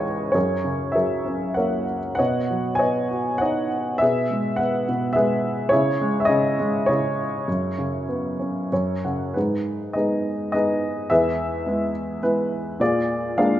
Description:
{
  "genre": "classical, lyrical solo piano",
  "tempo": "89-108 BPM",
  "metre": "3/4",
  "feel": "rubato",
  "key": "G# minor from 9.4 s",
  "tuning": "A4 = 440 Hz",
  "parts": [
    { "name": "dark upright piano", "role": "solo", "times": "0.0-13.6 s", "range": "C#2 to G#5", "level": "-20 LUFS", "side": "equal", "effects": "none" }
  ],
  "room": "moderate scoring stage reverb, RT60 1.5 s",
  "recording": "nothing above 8.0 kHz",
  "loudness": "-20 LUFS",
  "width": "side -12 dB against mid",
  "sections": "0.0-9.4 A section; 9.4-13.6 B section",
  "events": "upright piano fill 8.4-9.4, 12.0-12.8",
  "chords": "0.4 F#add9; 2.2 Badd9; 4.0 E/B; 5.7 C#m; 7.5 F#sus4; 8.7 F#5; 9.4 G#m; 11.1 E; 12.8 A#7"
}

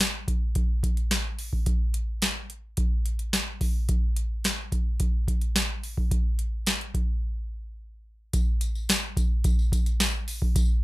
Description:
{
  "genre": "funk",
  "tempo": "108 BPM",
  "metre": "4/4",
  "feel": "straight",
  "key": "none",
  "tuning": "none",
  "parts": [
    { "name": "booming analog drum machine", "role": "drums", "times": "0.0-10.7 s", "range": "hi-hat, kick drum, snare drum", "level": "-24 LUFS", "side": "equal", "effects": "none" },
    { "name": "tambourine", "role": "percussion", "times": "8.3-10.7 s", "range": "none", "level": "-40 LUFS", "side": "left 6 dB", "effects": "none" }
  ],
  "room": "little or no reverb",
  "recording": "rough home demo mix",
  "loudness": "-24 LUFS",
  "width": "side -19 dB against mid",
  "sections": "0.0-8.3 A section; 8.3-10.8 B section",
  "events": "break 7.2-8.3",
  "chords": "none"
}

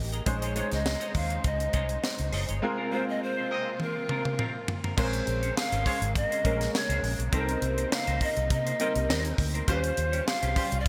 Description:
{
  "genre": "polished 1980s jazz-funk pop",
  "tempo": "102 BPM",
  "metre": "4/4",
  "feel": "swing 54% on 16ths",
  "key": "Bb dorian",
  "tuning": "A4 = 440 Hz",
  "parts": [
    { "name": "clear grand piano", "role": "accompaniment", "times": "0.0-10.9 s", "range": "G3 to C5", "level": "-37 LUFS", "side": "equal", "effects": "ensemble chorus" },
    { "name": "warm studio string section", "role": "sustained chords", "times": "0.0-10.9 s", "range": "C3 to C5", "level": "-42 LUFS", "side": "equal", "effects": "none" },
    { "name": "vintage muted fingered electric bass", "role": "bass", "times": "0.0-10.9 s", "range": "Gb1 to C3", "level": "-33 LUFS", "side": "equal", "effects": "none" },
    { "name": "semi-hollow electric guitar", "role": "riff", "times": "0.1-10.9 s", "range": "C4 to Eb5", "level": "-39 LUFS", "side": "equal", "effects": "ensemble chorus" },
    { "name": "tight funk drum kit", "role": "drums", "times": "0.1-10.9 s", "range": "crash cymbal, hi-hat, kick drum, snare drum, toms", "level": "-33 LUFS", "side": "equal", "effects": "gated reverb" },
    { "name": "breathy bright large pan pipes", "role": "melody", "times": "0.6-10.9 s", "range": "Bb4 to F5", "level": "-34 LUFS", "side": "equal", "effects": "none" },
    { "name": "bright horn section", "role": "second line", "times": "3.5-6.0, 9.7-10.7 s", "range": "G3 to Eb5", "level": "-40 LUFS", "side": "equal", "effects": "none" }
  ],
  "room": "light reverb, small room ambience",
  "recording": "bright 1980s-style digital production",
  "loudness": "-28 LUFS",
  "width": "mono",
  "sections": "0.0-5.0 A section; 5.0-10.9 B section",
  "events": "band accent 2.6-5.0; drum fill 3.8-5.0",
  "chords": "0.3 Bbm11; 2.6 Ab69; 5.0 Bbm9; 7.3 Cm7; 9.7 Eb13"
}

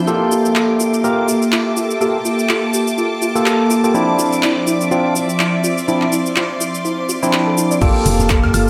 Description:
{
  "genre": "deep house",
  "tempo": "124 BPM",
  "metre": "4/4",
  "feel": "swing 57% on 16ths",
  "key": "G minor",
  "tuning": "A4 = 440 Hz",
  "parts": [
    { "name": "warm analog pad", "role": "sustained chords", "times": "0.0-8.7 s", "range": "F3 to F5", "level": "-23 LUFS", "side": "equal", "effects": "chorus, sidechain pumping" },
    { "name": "soft round pluck", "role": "arpeggios", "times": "0.0-8.6 s", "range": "E4 to D5", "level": "-27 LUFS", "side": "equal", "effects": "lush chorus, sidechain pumping, analog delay" },
    { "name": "overdriven tine electric piano", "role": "stabs", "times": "0.0-8.7 s", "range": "F3 to Bb4", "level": "-20 LUFS", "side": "equal", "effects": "sidechain pumping, low-pass filter, delay" },
    { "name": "clear studio string section", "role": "texture", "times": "0.0-8.7 s", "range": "Bb3 to C6", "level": "-30 LUFS", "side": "equal", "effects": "sidechain pumping" },
    { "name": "soft string machine", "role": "texture", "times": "0.0-8.7 s", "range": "A5 to D6", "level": "-29 LUFS", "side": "equal", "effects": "phaser, ensemble chorus" },
    { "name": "punchy analog drum machine", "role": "drums", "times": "0.1-8.7 s", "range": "cabasa, crash cymbal, handclaps, hi-hat, woodblock", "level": "-24 LUFS", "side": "equal", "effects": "overdrive" },
    { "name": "woody FM bass", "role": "bass", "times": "7.8-8.7 s", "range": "F1 to G2", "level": "-20 LUFS", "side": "equal", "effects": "sidechain pumping" },
    { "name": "electronic kick drum", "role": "drums", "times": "7.8-8.4 s", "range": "none", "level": "-18 LUFS", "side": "equal", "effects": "none" },
    { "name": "soft brush drum kit", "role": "drums", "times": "7.8-8.7 s", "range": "hi-hat, shaker, snare drum", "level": "-36 LUFS", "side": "equal", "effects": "none" },
    { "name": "congas", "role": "percussion", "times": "8.1-8.5 s", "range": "none", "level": "-27 LUFS", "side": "equal", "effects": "none" }
  ],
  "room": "wet plate reverb, RT60 1.3 s, small room ambience",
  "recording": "dreamy mix soaked in reverb",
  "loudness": "-16 LUFS",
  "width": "mono",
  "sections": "0.0-7.8 A section",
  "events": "filter sweep on synth arpeggio sound 0.0-7.8",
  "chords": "0.1 Gm9; 3.9 Dm9; 7.8 Gm9"
}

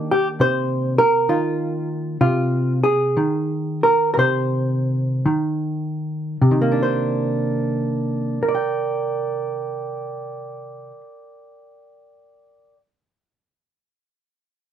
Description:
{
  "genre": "solo jazz",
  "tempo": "50-69 BPM",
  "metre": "4/4",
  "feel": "swing 66% on 8ths",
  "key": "C minor",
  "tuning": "A4 = 438 Hz",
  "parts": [
    { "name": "hollow-body jazz guitar", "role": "solo", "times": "0.0-12.8 s", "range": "C3 to G5", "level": "-19 LUFS", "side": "right 1 dB", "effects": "none" }
  ],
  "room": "moderate studio ambience, RT60 0.5 s",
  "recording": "band playing live in one room",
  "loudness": "-18 LUFS",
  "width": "side -9 dB against mid",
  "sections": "0.0-6.4 A section; 6.4-11.2 B section",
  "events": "slowing down 0.0-6.4",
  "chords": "0.0 Cm9"
}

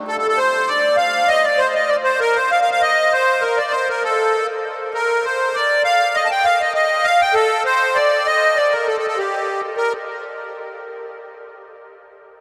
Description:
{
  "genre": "celtic folk",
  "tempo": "198 BPM",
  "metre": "4/4",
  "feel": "swing 54% on 8ths",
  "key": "unclear",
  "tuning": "A4 = 440 Hz",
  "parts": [
    { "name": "accordion", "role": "solo", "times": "0.1-9.9 s", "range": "G4 to A5", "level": "-18 LUFS", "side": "equal", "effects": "light tremolo tuning, diffuse ambient delay" }
  ],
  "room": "wet huge ambient reverb, RT60 9.2 s",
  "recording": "dreamy mix soaked in reverb",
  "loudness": "-17 LUFS",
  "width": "mono",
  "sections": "0.1-9.8 A section; 9.8-11.0 B section",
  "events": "none",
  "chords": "none"
}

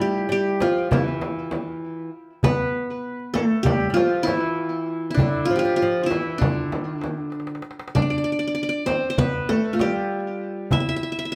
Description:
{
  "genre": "Turkish makam ensemble",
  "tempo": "196 BPM (eighths)",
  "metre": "9/8",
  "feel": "straight",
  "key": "unclear",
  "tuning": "A4 = 441 Hz",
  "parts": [
    { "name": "qanun", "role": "melody", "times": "0.0-11.3 s", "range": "D4 to E5", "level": "-27 LUFS", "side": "equal", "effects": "tape echo" },
    { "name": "flamenco guitar", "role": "second line", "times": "0.0-11.3 s", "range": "D3 to E4", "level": "-29 LUFS", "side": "equal", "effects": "none" },
    { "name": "darbuka", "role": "percussion", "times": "0.5-10.9 s", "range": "none", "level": "-27 LUFS", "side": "equal", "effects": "none" },
    { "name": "frame drum", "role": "percussion", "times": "0.6-10.9 s", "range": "none", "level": "-30 LUFS", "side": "equal", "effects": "none" }
  ],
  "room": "moderate large studio reverb, RT60 1.2 s",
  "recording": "band playing live in one room",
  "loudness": "-23 LUFS",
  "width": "mono",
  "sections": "0.0-11.3 A section",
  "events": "drum fill 7.3-8.0",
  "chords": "none"
}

